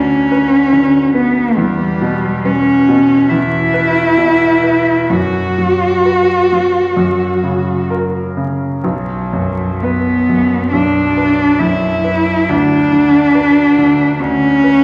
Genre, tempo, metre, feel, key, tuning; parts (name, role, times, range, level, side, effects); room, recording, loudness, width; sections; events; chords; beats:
classical, romantic duo for cello and grand piano; 66 BPM; 4/4; uneven beats, rubato; B minor; A4 = 440 Hz
rich cello; melody; 0.0-14.8 s; F#3 to F#4; -14 LUFS; equal
bright concert grand piano; accompaniment; 0.0-14.8 s; B1 to B4; -20 LUFS; equal
wet concert hall reverb, RT60 2.0 s; vinyl crackle; -13 LUFS; mono
0.0-14.8 A section
0.0 Bm/D; 1.6 C#m7b5/E; 5.1 B5/F#; 7.0 F#; 8.8 Bm; 12.5 Bm/D
0.71 | 1.56 2.45 3.30 4.17 | 5.09 6.04 6.96 7.89 | 8.83 9.82 10.72 11.60 | 12.48 13.36 14.21